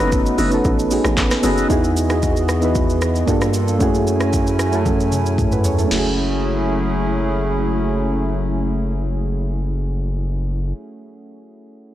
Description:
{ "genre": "amapiano", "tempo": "114 BPM", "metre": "4/4", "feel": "straight", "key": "F# dorian", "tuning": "A4 = 440 Hz", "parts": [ { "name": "soft electric-piano-like synth keys", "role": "accompaniment", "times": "0.0-11.9 s", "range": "A3 to C#5", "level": "-21 LUFS", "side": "right 1 dB", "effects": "chorus" }, { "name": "hollow soft pad", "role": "sustained chords", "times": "0.0-10.7 s", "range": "E3 to G#5", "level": "-24 LUFS", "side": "equal", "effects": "chorus, sidechain pumping" }, { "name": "tonewheel organ", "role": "stabs", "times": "0.0-1.7 s", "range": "A4 to D#5", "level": "-27 LUFS", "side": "left 2 dB", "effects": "overdrive, slow rotary speaker, tape echo" }, { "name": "hollow log drum bass", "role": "bass", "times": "0.0-1.7 s", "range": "F#1 to A1", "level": "-22 LUFS", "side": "equal", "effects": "none" }, { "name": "afro-pop drum kit", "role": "drums", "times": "0.0-6.0 s", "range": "crash cymbal, handclaps, hi-hat, kick drum, rim click, shaker, snare drum, toms", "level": "-22 LUFS", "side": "equal", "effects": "none" }, { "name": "round analog bass", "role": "bass", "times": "1.7-10.7 s", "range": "F#1 to G2", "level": "-21 LUFS", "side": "equal", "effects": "none" } ], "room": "light reverb, digital ambience", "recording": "blown-out, overdriven recording, overdrive", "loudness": "-16 LUFS", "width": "side -13 dB against mid", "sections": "0.0-1.7 A section; 1.7-5.9 B section; 5.9-10.1 C section", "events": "drop 0.0-1.7; drum fill 4.9-5.9", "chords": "0.0 B7/F#; 1.7 Emaj7; 3.3 Gm7; 3.8 F#m7", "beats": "0.12 0.65 1.17 | 1.70 2.23 2.75 3.28 | 3.81 4.33 4.86 5.38 | 5.91 6.44 6.96 7.49 | 8.02 8.54 9.07 9.59" }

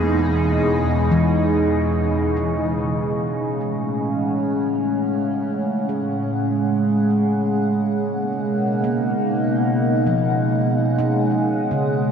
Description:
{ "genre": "ambient", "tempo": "free time", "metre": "none", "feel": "none", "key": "unclear", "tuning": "A4 = 441 Hz", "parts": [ { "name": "evolving wavetable pad", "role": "sustained chords", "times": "0.0-12.1 s", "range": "A2 to F#5", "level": "-20 LUFS", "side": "equal", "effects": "chorus, built-in reverb, phaser" }, { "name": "handpan", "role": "arpeggios", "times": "0.0-12.1 s", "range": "Db3 to Ab4", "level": "-27 LUFS", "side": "left 2 dB", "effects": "ping-pong delay" }, { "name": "muted studio double bass section", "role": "bass", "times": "0.0-2.8 s", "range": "E2", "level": "-24 LUFS", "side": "equal", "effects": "none" }, { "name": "overtone-sweeping drone", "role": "drone", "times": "0.0-12.1 s", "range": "Db3 to Ab3", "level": "-24 LUFS", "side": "right 2 dB", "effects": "chorus, built-in reverb, phaser" } ], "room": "wet huge ambient reverb, RT60 9.4 s", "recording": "dark, warm production", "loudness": "-18 LUFS", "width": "side -7 dB against mid", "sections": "0.0-2.9 A section; 2.9-12.1 B section", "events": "fade-in on handpan 2.9-12.1", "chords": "0.0 Emaj7; 2.9 A6; 5.3 Gbmadd9; 7.8 Cbmaj7", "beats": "free time" }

